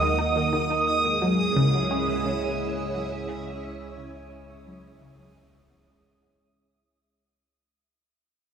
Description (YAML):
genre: ambient, sequencer-driven space music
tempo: 87 BPM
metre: 4/4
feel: straight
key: C# dorian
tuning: A4 = 438 Hz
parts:
  - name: string machine, full ensemble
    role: sustained chords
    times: 0.0-6.4 s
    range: G#3 to F#5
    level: -28 LUFS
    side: right 2 dB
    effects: ensemble chorus
  - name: analog pluck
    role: riff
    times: 0.0-6.0 s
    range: C#3 to D#4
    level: -27 LUFS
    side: left 1 dB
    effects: chorus, phaser, tape echo
  - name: analog drone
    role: bass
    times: 0.0-6.4 s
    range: C#2 to D#2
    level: -36 LUFS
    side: equal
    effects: chorus, phaser
  - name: bubbling stepped-filter texture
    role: texture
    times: 0.0-6.4 s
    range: D#6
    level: -27 LUFS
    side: right 2 dB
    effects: chorus, built-in reverb
room: wet plate reverb, RT60 2.8 s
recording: none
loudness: -22 LUFS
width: side -8 dB against mid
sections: 0.0-6.4 A section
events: fade-out on synth arpeggio sound 0.0-6.4; fade-out 0.0-6.4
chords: 0.0 D#m; 0.9 C#m